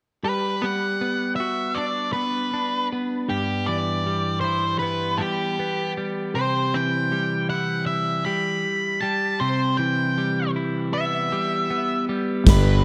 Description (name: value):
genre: post-rock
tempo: 78 BPM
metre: 4/4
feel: straight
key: unclear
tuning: A4 = 441 Hz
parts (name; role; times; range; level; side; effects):
- octave-fuzz lead guitar; melody; 0.2-12.8 s; G4 to B5; -27 LUFS; equal; distortion, analog delay
- twelve-string electric guitar; arpeggios; 0.2-12.8 s; G2 to F#4; -28 LUFS; equal; analog delay
- fuzz fingered electric bass; bass; 12.5-12.8 s; G1; -19 LUFS; equal; overdrive
- big rock drum kit; drums; 12.5-12.6 s; crash cymbal, kick drum, snare drum; -18 LUFS; equal; none
room: moderate concert hall reverb, RT60 2.3 s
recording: none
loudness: -24 LUFS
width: mono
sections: 0.2-12.5 A section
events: none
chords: 0.2 Gmaj7; 3.3 Em7/G; 6.4 Cmaj7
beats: | 0.25 1.01 1.77 2.54 | 3.30 4.06 4.83 5.59 | 6.35 7.12 7.88 8.65 | 9.41 10.18 10.94 11.70 | 12.47